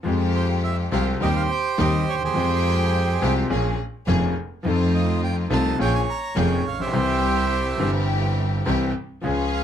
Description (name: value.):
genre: tango.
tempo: 105 BPM.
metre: 4/4.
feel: rubato.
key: F harmonic minor.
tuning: A4 = 440 Hz.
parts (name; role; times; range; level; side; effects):
clear concert grand piano; accompaniment; 0.0-9.6 s; F1 to G5; -24 LUFS; left 2 dB; none.
rich studio string section; stabs; 0.0-9.6 s; Ab3 to G5; -30 LUFS; left 2 dB; none.
clear double bass; bass; 0.1-9.6 s; F1 to F2; -24 LUFS; right 1 dB; none.
bandoneon; melody; 0.4-9.6 s; G4 to Bb5; -25 LUFS; right 5 dB; none.
room: light reverb.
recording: close, detailed microphones.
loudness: -20 LUFS.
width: side -9 dB against mid.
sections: 0.1-9.6 A section.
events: none.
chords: 0.1 Fmadd9; 1.2 Cm/Eb; 2.4 Fmadd9; 3.5 Bbm7; 4.6 F7; 5.8 Bbm7; 6.9 C.